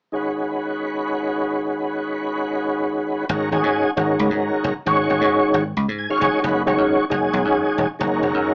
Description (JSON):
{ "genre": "jazz", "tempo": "267 BPM (eighths)", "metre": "7/8", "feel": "straight", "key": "G# minor", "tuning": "A4 = 440 Hz", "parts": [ { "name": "tonewheel organ", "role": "accompaniment", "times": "0.1-8.5 s", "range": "D#3 to G#5", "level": "-21 LUFS", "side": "equal", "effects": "slow rotary speaker, chorus vibrato" }, { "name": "dry thumbed slap bass", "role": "bass", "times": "3.3-8.5 s", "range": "E1 to G#2", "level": "-26 LUFS", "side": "equal", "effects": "none" } ], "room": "moderate studio ambience, RT60 0.5 s", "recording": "band playing live in one room, small speaker sound", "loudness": "-21 LUFS", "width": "mono", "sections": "0.2-3.3 A section; 3.3-8.5 B section", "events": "tonewheel organ fill 5.8-6.4", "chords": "0.2 G#m7; 3.3 G#9sus4; 6.4 F#sus4", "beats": "| 0.15 0.38 0.60 0.83 1.05 1.28 1.50 | 1.73 1.95 2.17 2.40 2.62 2.85 3.07 | 3.30 3.52 3.75 3.97 4.20 4.42 4.64 | 4.87 5.09 5.32 5.54 5.76 5.99 6.21 | 6.44 6.66 6.88 7.11 7.33 7.56 7.78 | 8.01 8.23 8.46" }